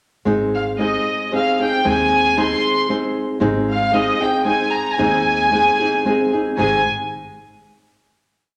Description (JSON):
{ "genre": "mexican folk, mariachi", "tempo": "114 BPM", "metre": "3/4", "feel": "swing 53% on 8ths", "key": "Ab major", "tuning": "A4 = 441 Hz", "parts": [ { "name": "nylon-string guitar", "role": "accompaniment", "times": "0.3-6.8 s", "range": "Ab2 to Ab4", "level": "-22 LUFS", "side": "equal", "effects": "none" }, { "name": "upright bass", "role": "bass", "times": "0.3-6.9 s", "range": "Ab1 to Eb2", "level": "-31 LUFS", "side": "equal", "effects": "none" }, { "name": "rich chamber violin section", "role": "melody", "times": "0.5-6.8 s", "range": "Eb5 to C6", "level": "-20 LUFS", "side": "equal", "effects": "none" } ], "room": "wet large studio reverb, RT60 1.4 s", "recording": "none", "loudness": "-18 LUFS", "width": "mono", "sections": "0.3-6.6 A section; 6.6-8.2 final chord", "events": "none", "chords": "0.3 Ab" }